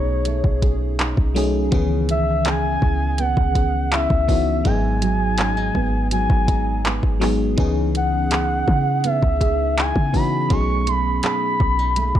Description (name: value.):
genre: contemporary R&B.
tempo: 82 BPM.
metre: 4/4.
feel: straight.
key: C# minor.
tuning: A4 = 440 Hz.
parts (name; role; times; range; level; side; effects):
gliding portamento lead; melody; 0.0-12.2 s; C#5 to C#6; -23 LUFS; equal; chorus, phaser, digital delay.
FM electric piano with soft pad layer; accompaniment; 0.0-12.2 s; D#3 to G#4; -25 LUFS; left 2 dB; chorus.
nylon-string guitar; arpeggios; 0.0-12.2 s; G#2 to G#4; -28 LUFS; right 6 dB; digital delay.
clean 808-style bass; bass; 0.0-12.2 s; G#1 to C#3; -22 LUFS; equal; none.
smooth R&B drum kit; drums; 0.3-12.2 s; handclaps, hi-hat, kick drum; -21 LUFS; equal; none.
room: little or no reverb.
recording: dark, warm production.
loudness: -17 LUFS.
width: side -11 dB against mid.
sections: 0.0-12.2 A section.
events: none.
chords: 0.0 B13; 1.7 C#m7; 4.7 G#m7; 7.6 C#m7; 10.5 B13.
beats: 0.26 0.99 | 1.72 2.46 3.19 3.92 | 4.65 5.38 6.11 6.84 | 7.58 8.31 9.04 9.77 | 10.50 11.23 11.97.